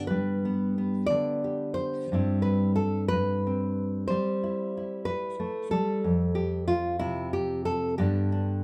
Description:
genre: folk, solo fingerstyle acoustic guitar.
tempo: 61 BPM (dotted quarters).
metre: 6/8.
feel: rubato.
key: unclear.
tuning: A4 = 439 Hz.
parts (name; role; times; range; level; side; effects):
nylon-string guitar; solo; 0.0-8.6 s; F2 to D5; -28 LUFS; equal; none.
room: moderate large studio reverb, RT60 0.8 s.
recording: band playing live in one room.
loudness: -28 LUFS.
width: mono.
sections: 0.0-8.6 A section.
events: none.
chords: 0.0 G; 2.1 Cmaj7/G; 6.0 F5; 8.0 G.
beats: | 0.10 1.09 | 2.11 3.11 | 4.09 5.07 | 6.03 7.00 | 7.98.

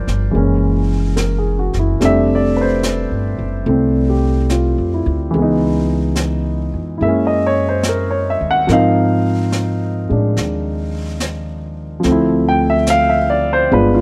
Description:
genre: jazz ballad.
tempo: 72 BPM.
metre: 4/4.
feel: swing 68% on 8ths.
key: unclear.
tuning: A4 = 439 Hz.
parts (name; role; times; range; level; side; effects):
warm baby grand piano; accompaniment; 0.0-14.0 s; E3 to G5; -18 LUFS; equal; none.
upright bass; bass; 0.0-14.0 s; F1 to A2; -22 LUFS; equal; none.
jazz brush drum kit; drums; 0.1-14.0 s; brushed snare drum, hi-hat, snare drum; -28 LUFS; equal; none.
room: small room reverb.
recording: dry, close 1970s-style studio recording.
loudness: -16 LUFS.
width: mono.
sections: 0.0-14.0 A section.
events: none.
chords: 0.3 F#9; 2.0 F69; 5.3 Dbm7; 7.0 F#9; 8.7 Ab69; 12.0 Dm9.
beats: 0.34 1.18 | 2.01 2.84 3.67 4.51 | 5.34 6.18 7.02 7.86 | 8.70 9.54 10.38 11.21 | 12.04 12.87 13.71.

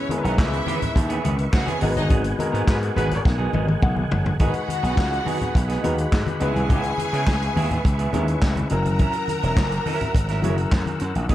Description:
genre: disco.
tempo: 104 BPM.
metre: 4/4.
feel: straight.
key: G# minor.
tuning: A4 = 440 Hz.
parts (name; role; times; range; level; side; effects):
rich symphonic string section; second line; 0.0-11.3 s; D#4 to B5; -29 LUFS; left 1 dB; none.
warm concert grand piano; accompaniment; 0.0-11.3 s; F#3 to F#5; -28 LUFS; left 2 dB; none.
tonewheel organ; sustained chords; 0.0-11.3 s; G#4 to E6; -33 LUFS; equal; chorus vibrato, fast rotary speaker.
clean electric guitar; accompaniment; 0.1-11.3 s; E3 to C#5; -31 LUFS; right 7 dB; none.
vintage drum kit; drums; 0.1-11.3 s; handclaps, hi-hat, kick drum, snare drum, toms; -23 LUFS; equal; none.
congas; percussion; 0.1-11.3 s; none; -31 LUFS; left 2 dB; none.
gritty slap bass; bass; 0.2-11.3 s; E1 to C#3; -24 LUFS; equal; overdrive.
warm horn section; stabs; 2.7-3.2 s; F#4 to B4; -29 LUFS; left 2 dB; none.
room: small room ambience.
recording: dark, warm production.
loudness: -19 LUFS.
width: side -13 dB against mid.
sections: 0.0-4.4 A section; 4.4-11.3 B section.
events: band accent 2.1-4.4; drum fill 3.3-4.4; grand piano fill 3.3-4.4.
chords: 0.0 C#m7; 1.8 G#m7; 6.4 C#m7; 8.7 F#7.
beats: 0.39 0.96 1.53 | 2.11 2.68 3.25 3.83 | 4.40 4.97 5.55 6.12 | 6.70 7.27 7.85 8.42 | 9.00 9.57 10.14 10.72 | 11.29.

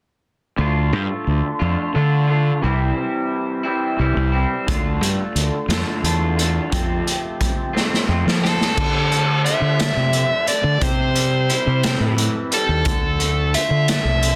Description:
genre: quiet-loud alternative rock.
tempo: 59 BPM (dotted quarters).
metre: 6/8.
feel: straight.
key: D minor.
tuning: A4 = 437 Hz.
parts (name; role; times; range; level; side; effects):
electric guitar through a small old amp; arpeggios; 0.6-14.4 s; F2 to F4; -27 LUFS; equal; lush chorus, slapback echo, plate reverb.
fuzz fingered electric bass; bass; 0.6-14.3 s; C2 to F3; -22 LUFS; equal; overdrive.
raw garage drum kit; drums; 4.7-14.4 s; crash cymbal, hi-hat, kick drum, snare drum; -24 LUFS; equal; none.
nasal lead guitar with a parked wah; melody; 8.4-14.4 s; A4 to E5; -23 LUFS; equal; overdrive.
room: light reverb.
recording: dense, heavily limited modern master.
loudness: -19 LUFS.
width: mono.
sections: 0.6-8.8 A section; 8.8-14.4 B section.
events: drum fill 7.7-8.8.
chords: 0.6 Dm; 2.6 C; 4.7 Dm; 6.7 F; 8.8 Dm; 10.8 C; 12.9 Dm.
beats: | 0.59 1.61 | 2.64 3.66 | 4.68 5.70 | 6.72 7.75 | 8.77 9.79 | 10.81 11.83 | 12.86 13.88.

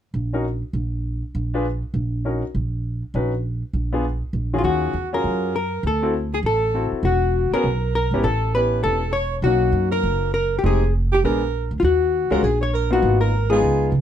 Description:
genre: jazz, small-group swing and bop.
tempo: 200 BPM.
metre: 4/4.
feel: swing 61% on 8ths.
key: Eb minor.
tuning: A4 = 440 Hz.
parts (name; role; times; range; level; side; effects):
upright bass; bass; 0.1-14.0 s; E1 to Db3; -22 LUFS; right 1 dB; none.
clear baby grand piano; accompaniment; 0.3-13.9 s; Eb3 to Cb5; -24 LUFS; left 2 dB; none.
hollow-body jazz guitar; melody; 4.6-13.9 s; F4 to C#5; -22 LUFS; left 6 dB; plate reverb.
clear alto saxophone; second line; 4.6-13.9 s; F4 to C#5; -26 LUFS; right 8 dB; none.
room: light reverb.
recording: dark, warm production.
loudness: -19 LUFS.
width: side -10 dB against mid.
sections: 0.0-4.6 A section; 4.6-14.0 B section.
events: none.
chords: 0.0 N.C.; 2.2 Bmaj9; 3.4 Bb7(no3); 4.6 Ebm11; 5.8 D9; 7.0 E69; 8.2 A9; 9.4 Bmaj9; 10.6 Fm9; 11.2 Bb7b9; 11.8 Ebm11; 13.0 Abm.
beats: 0.14 0.44 0.74 | 1.04 1.34 1.64 1.94 | 2.24 2.54 2.84 3.14 | 3.44 3.74 4.04 4.34 | 4.64 4.94 5.24 5.54 | 5.84 6.14 6.44 6.74 | 7.04 7.34 7.64 7.94 | 8.24 8.54 8.84 9.14 | 9.44 9.74 10.04 10.34 | 10.63 10.93 11.23 11.53 | 11.83 12.13 12.43 12.73 | 13.03 13.32 13.62 13.92.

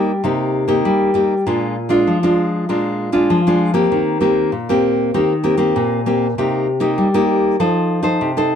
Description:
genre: samba.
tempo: 98 BPM.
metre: 4/4.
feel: straight.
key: Bb major.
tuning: A4 = 440 Hz.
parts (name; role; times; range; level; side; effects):
nylon-string guitar; solo; 0.0-8.6 s; Bb2 to C5; -14 LUFS; left 1 dB; none.
room: moderate studio reverb, RT60 0.6 s.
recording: dark, warm production.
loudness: -14 LUFS.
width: side -8 dB against mid.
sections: 0.0-8.6 A section.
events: none.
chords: 0.0 Cm7; 1.5 Bb7; 3.9 Eb6; 6.4 Cm7; 7.6 F7.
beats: 0.24 0.85 | 1.46 2.07 2.69 3.30 | 3.91 4.53 5.14 5.75 | 6.37 6.98 7.59 8.21.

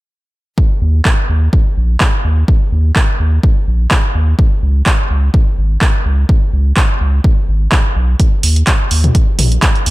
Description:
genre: acid house.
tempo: 126 BPM.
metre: 4/4.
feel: swing 55% on 16ths.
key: unclear.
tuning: A4 = 439 Hz.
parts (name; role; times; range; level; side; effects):
electronic kick drum; drums; 0.6-9.7 s; none; -13 LUFS; equal; none.
warm sub bass; bass; 0.8-9.9 s; Ab1 to Eb2; -12 LUFS; equal; sidechain pumping.
punchy analog drum machine; drums; 1.1-9.9 s; handclaps, hi-hat, toms; -17 LUFS; right 1 dB; none.
room: little or no reverb.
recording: none.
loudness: -10 LUFS.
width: side -19 dB against mid.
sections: 0.6-9.9 A section.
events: none.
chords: none.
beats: | 0.58 1.05 1.53 2.01 | 2.48 2.96 3.43 3.91 | 4.39 4.86 5.34 5.82 | 6.29 6.77 7.24 7.72 | 8.20 8.67 9.15 9.62.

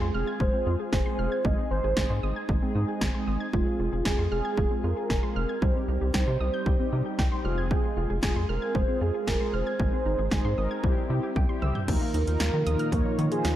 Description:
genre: synth-pop.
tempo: 115 BPM.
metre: 4/4.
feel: straight.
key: F minor.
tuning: A4 = 439 Hz.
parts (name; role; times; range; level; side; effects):
warm velvety synth lead; melody; 0.0-13.6 s; F4 to Eb5; -32 LUFS; right 2 dB; chorus, diffuse ambient delay, shimmer reverb.
mellow synth brass; accompaniment; 0.0-13.6 s; G3 to Db5; -32 LUFS; left 1 dB; chorus, shimmer reverb.
soft round pluck; arpeggios; 0.0-13.6 s; F3 to Ab6; -35 LUFS; right 2 dB; chorus, diffuse ambient delay, shimmer reverb.
rubbery square bass; bass; 0.0-13.5 s; F1 to Eb3; -28 LUFS; equal; none.
punchy analog drum machine; drums; 0.4-13.6 s; crash cymbal, hi-hat, kick drum, snare drum, toms; -28 LUFS; equal; none.
brassy analog pad; sustained chords; 11.9-13.6 s; Bb2 to F4; -32 LUFS; equal; chorus.
room: moderate plate reverb, RT60 1.7 s.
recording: dreamy mix soaked in reverb.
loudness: -24 LUFS.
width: side -12 dB against mid.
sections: 0.0-11.9 A section; 11.9-13.6 B section.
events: drum fill 11.4-11.9.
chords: 0.0 Fm; 1.4 Ab; 3.5 Fm; 5.6 Cm; 7.4 Fm; 9.8 Ab; 10.8 C; 11.9 Ebsus2.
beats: 0.40 0.93 | 1.45 1.97 2.49 3.01 | 3.54 4.06 4.58 5.10 | 5.62 6.14 6.67 7.19 | 7.71 8.23 8.75 9.27 | 9.80 10.32 10.84 11.36 | 11.88 12.40 12.93 13.45.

